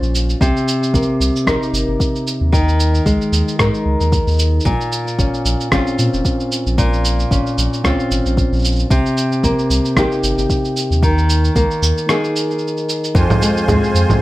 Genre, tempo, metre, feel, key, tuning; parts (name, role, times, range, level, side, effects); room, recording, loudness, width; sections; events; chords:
folktronica; 113 BPM; 4/4; swing 56% on 16ths; Bb dorian; A4 = 443 Hz
nylon-string guitar; arpeggios; 0.0-14.2 s; F2 to C5; -17 LUFS; equal; low-pass filter, digital delay
warm sub bass; bass; 0.0-14.0 s; F1 to Bb2; -17 LUFS; equal
electronic cabasa, rim click and congas; drums; 0.0-14.2 s; -21 LUFS; right 1 dB
electronic kick drum; drums; 0.4-14.2 s; -19 LUFS; equal
musette accordion; sustained chords; 13.2-14.2 s; F4 to C6; -20 LUFS; right 3 dB
light reverb; -14 LUFS; side -17 dB against mid
0.0-13.2 A section; 13.2-14.2 B section
break 12.1-13.2
0.4 Cm7; 2.5 Ebsus4; 4.7 Bbmadd9; 8.9 Cm7; 11.0 Ebsus4; 13.2 Fm